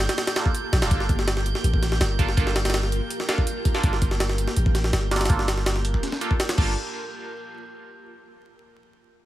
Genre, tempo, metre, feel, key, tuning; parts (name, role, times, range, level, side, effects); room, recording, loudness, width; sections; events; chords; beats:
drum and bass, jungle; 164 BPM; 4/4; straight; G minor; A4 = 440 Hz
ethereal airy pad; sustained chords; 0.0-6.8 s; Bb3 to Bb4; -34 LUFS; equal; ensemble chorus, built-in reverb, tremolo
long sustained 808-style bass; bass; 0.0-6.8 s; D1 to Bb1; -24 LUFS; equal; tube saturation
jungle sampler-style drum kit; drums; 0.0-6.7 s; crash cymbal, hi-hat, kick drum, snare drum; -24 LUFS; equal
drifting glass-harmonics texture; texture; 0.0-6.8 s; G6; -36 LUFS; right 5 dB; chorus, built-in reverb
band-passed chord stab; stabs; 0.4-6.7 s; Bb3 to A4; -31 LUFS; right 3 dB; phaser, dub echo
digital ambience; vinyl crackle; -21 LUFS; side -14 dB against mid
0.0-6.8 A section; 6.8-8.2 B section
drop 0.0-6.8
0.0 Gm9; 6.8 N.C.
0.18 0.54 | 0.91 1.27 1.64 2.01 | 2.37 2.74 3.10 3.47 | 3.83 4.20 4.57 4.93 | 5.30 5.67 6.03 6.40 | 6.76